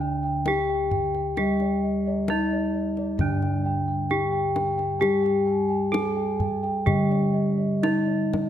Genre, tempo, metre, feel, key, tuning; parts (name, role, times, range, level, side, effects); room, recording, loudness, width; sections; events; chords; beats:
Javanese gamelan; 60-66 BPM; 4/4; straight; A4 = 436 Hz
gamelan-type bronze metallophone; melody; 0.0-8.5 s; D4 to A4-40c; -27 LUFS; left 2 dB
gamelan-type bronze metallophone; accompaniment; 0.0-8.5 s; D3 to G3+30c; -27 LUFS; right 1 dB
gamelan-type bossed gongs; arpeggios; 0.0-8.5 s; D5 to A5-40c; -34 LUFS; left 3 dB
gamelan-type bronze metallophone; arpeggios; 0.0-8.5 s; D5 to A5-40c; -32 LUFS; right 5 dB
gamelan-type bossed gongs; bass; 0.0-8.5 s; D2 to G4+30c; -30 LUFS; right 1 dB
kendang; percussion; 0.5-8.5 s; -30 LUFS; left 1 dB
light reverb; -22 LUFS; side -10 dB against mid
0.0-8.5 A section
0.46 | 1.37 2.27 3.18 4.09 | 5.00 5.92 6.86 7.83